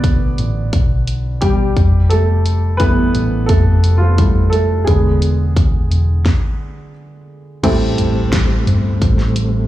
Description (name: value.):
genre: piano-driven pop.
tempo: 87 BPM.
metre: 4/4.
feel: straight.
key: A minor.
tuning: A4 = 439 Hz.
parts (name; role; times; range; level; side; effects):
warm upright piano; accompaniment; 0.0-9.7 s; A2 to D5; -19 LUFS; right 1 dB; slapback echo.
hollow-body short-scale picked electric bass; bass; 0.0-9.7 s; E1 to B1; -15 LUFS; equal; none.
pop drum kit; drums; 0.0-9.5 s; crash cymbal, hi-hat, kick drum, snare drum, toms; -16 LUFS; equal; none.
mellow tonewheel organ; sustained chords; 7.6-9.7 s; G3 to C4; -22 LUFS; left 1 dB; chorus vibrato, fast rotary speaker.
room: little or no reverb.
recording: live gig heard through the venue's PA, club reverb.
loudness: -12 LUFS.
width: side -14 dB against mid.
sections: 0.0-7.6 A section; 7.6-9.7 B section.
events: upright piano solo 0.0-7.6; stop 6.3-7.6.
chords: 0.0 Bm7b5; 1.8 Fmaj7; 4.9 E7; 7.6 Am7.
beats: 0.04 0.73 1.42 | 2.11 2.80 3.50 4.18 | 4.88 5.57 6.26 6.95 | 7.64 8.33 9.02.